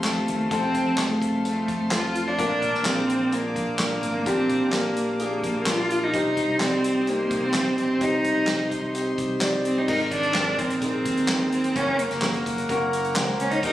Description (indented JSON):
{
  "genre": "piano-driven pop",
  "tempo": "128 BPM",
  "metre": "4/4",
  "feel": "straight",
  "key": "unclear",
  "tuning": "A4 = 440 Hz",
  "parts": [
    { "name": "warm concert grand piano", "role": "accompaniment", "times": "0.0-13.7 s", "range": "Ab2 to D5", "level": "-26 LUFS", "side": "left 1 dB", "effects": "none" },
    { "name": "bright tonewheel organ", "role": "sustained chords", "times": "0.0-13.7 s", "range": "Db4 to D6", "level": "-35 LUFS", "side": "equal", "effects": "overdrive, slow rotary speaker" },
    { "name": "fingered electric bass", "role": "bass", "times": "0.0-13.7 s", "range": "Gb1 to F2", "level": "-34 LUFS", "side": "equal", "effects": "none" },
    { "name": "natural country drum kit", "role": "drums", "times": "0.0-13.7 s", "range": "crash cymbal, handclaps, hi-hat, kick drum, snare drum", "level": "-29 LUFS", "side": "equal", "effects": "none" },
    { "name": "warm cello", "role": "melody", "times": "0.1-13.7 s", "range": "A3 to F4", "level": "-24 LUFS", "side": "right 1 dB", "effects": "none" }
  ],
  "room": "light reverb, studio reverb",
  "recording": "recorded on a phone in the room, compression",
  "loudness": "-21 LUFS",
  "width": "side -13 dB against mid",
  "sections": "0.0-9.9 A section; 9.9-13.7 B section",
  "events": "none",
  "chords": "0.0 F; 2.4 Bb; 6.1 Cm; 9.9 Abadd9; 11.8 Gb"
}